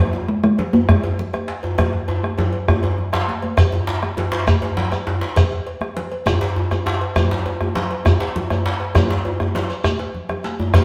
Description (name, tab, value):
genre	west african traditional, West African drum ensemble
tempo	134 BPM (dotted quarters)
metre	12/8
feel	straight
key	unclear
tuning	A4 = 441 Hz
part	talking drum	melody	0.0-3.2 s	Ab3 to Bb3	-20 LUFS	equal	none
part	congas	percussion	0.1-10.8 s	none	-31 LUFS	equal	none
part	djembe	percussion	0.1-10.8 s	none	-29 LUFS	equal	none
part	djembe	percussion	0.1-10.8 s	none	-24 LUFS	equal	none
part	bombo	percussion	0.3-10.8 s	none	-22 LUFS	equal	none
part	cowbell	percussion	0.6-10.8 s	none	-33 LUFS	equal	none
part	shekere	percussion	3.6-10.8 s	none	-34 LUFS	equal	none
room	wet stone room reverb, RT60 1.3 s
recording	band playing live in one room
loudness	-20 LUFS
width	mono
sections	0.0-3.6 A section; 3.6-10.8 B section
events	drum fill 1.8-3.6, 10.1-10.7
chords	none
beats	0.43 0.88 1.33 | 1.78 2.23 2.68 3.13 | 3.58 4.02 4.47 4.92 | 5.37 5.82 6.26 6.71 | 7.16 7.61 8.05 8.50 | 8.95 9.40 9.84 10.29 | 10.74